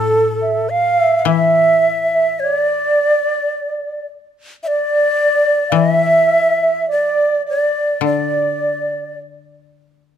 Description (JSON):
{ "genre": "japanese traditional, Japanese chamber music", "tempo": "53 BPM", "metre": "4/4", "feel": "rubato", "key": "D minor", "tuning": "A4 = 440 Hz", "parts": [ { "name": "breathy shakuhachi", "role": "melody", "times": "0.0-9.2 s", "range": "A4 to F5", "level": "-17 LUFS", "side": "left 2 dB", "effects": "none" }, { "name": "mellow bansuri", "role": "second line", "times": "0.0-9.2 s", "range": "A4 to F5", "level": "-17 LUFS", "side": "right 5 dB", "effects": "none" }, { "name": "koto", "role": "accompaniment", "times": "0.0-10.2 s", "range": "A2 to E3", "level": "-21 LUFS", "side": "left 13 dB", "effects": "none" } ], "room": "light reverb", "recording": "close, detailed microphones", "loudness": "-13 LUFS", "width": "side -9 dB against mid", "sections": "0.0-10.2 A section", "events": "none", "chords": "none", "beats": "0.13 1.26 | 2.39 3.51 4.62 5.74 | 6.88 8.02 9.20" }